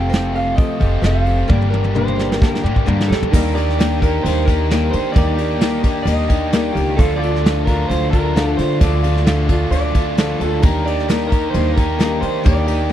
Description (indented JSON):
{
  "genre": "folk rock and heartland rock",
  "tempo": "131 BPM",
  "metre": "4/4",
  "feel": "straight",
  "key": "unclear",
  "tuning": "A4 = 440 Hz",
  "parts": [
    { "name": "electric guitar through a small old amp", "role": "melody", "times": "0.0-12.9 s", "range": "G4 to G5", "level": "-23 LUFS", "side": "right 2 dB", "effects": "none" },
    { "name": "picked old ladder-braced acoustic guitar", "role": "accompaniment", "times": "0.0-12.9 s", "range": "G2 to Bb4", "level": "-23 LUFS", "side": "left 6 dB", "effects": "none" },
    { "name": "biting overdriven guitar", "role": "riff", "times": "0.0-12.9 s", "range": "F2 to G4", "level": "-23 LUFS", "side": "equal", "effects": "none" },
    { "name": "upright bass", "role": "bass", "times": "0.0-12.9 s", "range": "F1 to Eb3", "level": "-19 LUFS", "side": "equal", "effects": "none" },
    { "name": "soft brush drum kit", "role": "drums", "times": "0.1-12.8 s", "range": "crash cymbal, hi-hat, kick drum, snare drum, toms", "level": "-17 LUFS", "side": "equal", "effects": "none" },
    { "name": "reed electric piano", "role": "accompaniment", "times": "3.3-12.9 s", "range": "Eb4 to D6", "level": "-30 LUFS", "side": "right 7 dB", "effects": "overdrive" }
  ],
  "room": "small room reverb",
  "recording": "dry, close 1970s-style studio recording",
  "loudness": "-14 LUFS",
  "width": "side -11 dB against mid",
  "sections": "0.0-3.3 A section; 3.3-12.9 B section",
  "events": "drum fill 1.5-3.3",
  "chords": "0.0 Fadd9; 1.5 Gm; 3.3 Ebmaj7; 7.0 Dm; 10.6 Ebmaj7",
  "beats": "0.12 0.58 1.04 | 1.50 1.96 2.42 2.87 | 3.33 3.79 4.24 4.70 | 5.15 5.61 6.07 6.52 | 6.98 7.43 7.89 8.35 | 8.80 9.26 9.72 10.18 | 10.63 11.09 11.55 12.01 | 12.46 12.92"
}